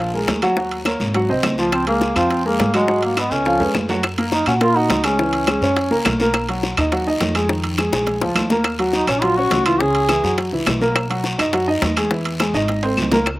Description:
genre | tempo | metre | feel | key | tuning
Afro-Cuban jazz | 208 BPM | 4/4 | straight | Db major, F# major from 4.0 s | A4 = 440 Hz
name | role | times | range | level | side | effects
warm baby grand piano | accompaniment | 0.0-13.2 s | C#3 to Gb5 | -20 LUFS | equal | none
upright bass | bass | 0.0-13.4 s | Ab1 to A#2 | -26 LUFS | equal | none
congas | percussion | 0.1-13.4 s | none | -28 LUFS | equal | none
bongos | percussion | 0.3-13.4 s | none | -25 LUFS | left 4 dB | none
guiro | percussion | 0.3-13.3 s | none | -30 LUFS | left 2 dB | none
timbales | percussion | 0.3-13.4 s | none | -26 LUFS | right 4 dB | none
claves | percussion | 0.4-13.4 s | none | -29 LUFS | left 3 dB | none
warm duduk | melody | 1.7-6.2, 8.9-10.4 s | Ab3 to G#4 | -19 LUFS | equal | none
room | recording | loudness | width
little or no reverb | recorded outdoors, with no room sound | -16 LUFS | side -17 dB against mid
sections
0.0-4.0 A section; 4.0-13.3 B section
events
drum fill 3.3-4.0, 7.9-8.7, 12.4-13.3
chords
0.0 Bb5; 0.6 Ebm7; 1.1 Ab6; 1.7 Db6; 2.9 Abm7; 3.5 Db7; 4.0 F#69; 5.2 C#madd11; 5.8 F#; 6.3 Bmaj7; 7.5 Fm7; 8.1 A#7; 8.7 D#m7; 9.8 C#m; 10.4 F#7; 11.0 Bmaj7; 12.1 E; 12.7 G#

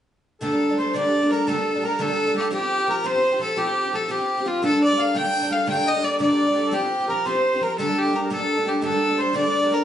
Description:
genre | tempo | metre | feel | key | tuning
celtic folk | 114 BPM (dotted quarters) | 6/8 | straight | G minor | A4 = 438 Hz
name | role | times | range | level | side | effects
clear fiddle | melody | 0.4-9.8 s | F4 to G5 | -23 LUFS | left 1 dB | none
accordion | second line | 0.4-9.8 s | F4 to G5 | -25 LUFS | equal | none
picked twelve-string acoustic guitar | accompaniment | 0.4-9.8 s | G2 to A4 | -24 LUFS | right 1 dB | none
room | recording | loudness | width
wet large studio reverb, RT60 0.9 s | band playing live in one room, nothing above 10.8 kHz | -19 LUFS | side -10 dB against mid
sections
0.4-8.8 A section; 8.8-9.8 A section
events
none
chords
0.4 Gmadd9; 2.5 Fsus2; 4.6 Gmadd9; 6.7 Fsus2; 7.8 Gmadd9

